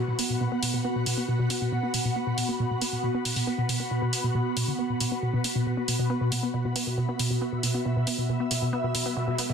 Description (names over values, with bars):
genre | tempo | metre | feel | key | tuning
driving peak-time techno | 137 BPM | 4/4 | straight | unclear | A4 = 440 Hz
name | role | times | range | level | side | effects
resonant blip pluck | riff | 0.0-9.5 s | B2 to B3 | -27 LUFS | equal | chorus, tube saturation, dub echo
downlifter and riser | sound effects | 0.0-1.3, 9.1-9.5 s | none | -47 LUFS | right 1 dB | none
ethereal airy pad | texture | 0.0-9.5 s | B3 to B5 | -30 LUFS | equal | ensemble chorus, built-in reverb, phaser
electronic hi-hat | drums | 0.2-9.5 s | none | -30 LUFS | right 1 dB | none
room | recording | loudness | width
light reverb | dense, heavily limited modern master | -25 LUFS | side -7 dB against mid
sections
0.0-9.5 A section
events
filter sweep on synth arpeggio sound 0.0-9.5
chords
0.0 B5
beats
0.41 0.84 | 1.28 1.72 2.16 2.60 | 3.03 3.47 3.91 4.35 | 4.79 5.22 5.66 6.10 | 6.54 6.98 7.41 7.85 | 8.29 8.73 9.17